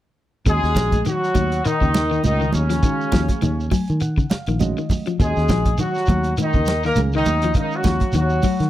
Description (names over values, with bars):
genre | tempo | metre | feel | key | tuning
afrobeat | 102 BPM | 4/4 | swing 56% on 16ths | Eb minor | A4 = 441 Hz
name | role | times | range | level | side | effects
warm horn section | melody | 0.5-8.7 s | Db3 to Bb4 | -22 LUFS | equal | slapback echo
reed electric piano | accompaniment | 0.5-8.1 s | Eb3 to Ab5 | -30 LUFS | right 6 dB | spring reverb
electric guitar at the edge of break-up | arpeggios | 0.5-8.7 s | Db3 to Gb3 | -26 LUFS | left 7 dB | none
fingered electric bass | bass | 0.5-8.7 s | Bb1 to Eb3 | -21 LUFS | equal | none
warm soul drum kit | drums | 0.5-8.7 s | hi-hat, kick drum, snare drum | -21 LUFS | equal | none
shekere | percussion | 0.5-8.7 s | none | -28 LUFS | right 2 dB | none
congas | percussion | 0.8-8.6 s | none | -27 LUFS | right 5 dB | none
room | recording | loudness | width
little or no reverb | dry, close 1970s-style studio recording | -17 LUFS | side -13 dB against mid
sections
0.5-8.7 A section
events
reed electric piano fill 3.4-5.2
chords
0.5 Ebm9